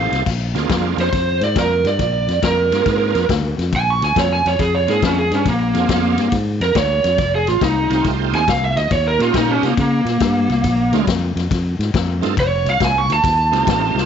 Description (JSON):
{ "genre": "electric blues shuffle", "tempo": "139 BPM", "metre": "4/4", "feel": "swing 67% on 8ths", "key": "Bb mixolydian", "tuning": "A4 = 444 Hz", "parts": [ { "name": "lead guitar through a small cranked amp", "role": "melody", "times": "0.0-14.1 s", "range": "Bb3 to Db6", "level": "-17 LUFS", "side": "right 2 dB", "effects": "overdrive" }, { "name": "bright tonewheel organ", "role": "accompaniment", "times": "0.0-14.1 s", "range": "A3 to A4", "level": "-24 LUFS", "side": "right 14 dB", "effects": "slow rotary speaker, overdrive, chorus vibrato" }, { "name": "fingered electric bass", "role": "bass", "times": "0.0-14.1 s", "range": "F1 to Db3", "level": "-20 LUFS", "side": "left 1 dB", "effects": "none" }, { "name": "swinging big-band drum kit", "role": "drums", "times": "0.1-14.0 s", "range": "crash cymbal, kick drum, ride cymbal, snare drum", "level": "-22 LUFS", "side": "left 5 dB", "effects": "none" } ], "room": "light reverb, studio reverb", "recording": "1960s-style stereo, nothing above 7.7 kHz", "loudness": "-15 LUFS", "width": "side -8 dB against mid", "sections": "0.3-14.1 A section", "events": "lead electric guitar solo 0.3-14.1; drum fill 13.9", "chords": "0.3 Bb9; 7.2 F9; 8.9 Eb9; 10.6 Bb9; 12.4 F9" }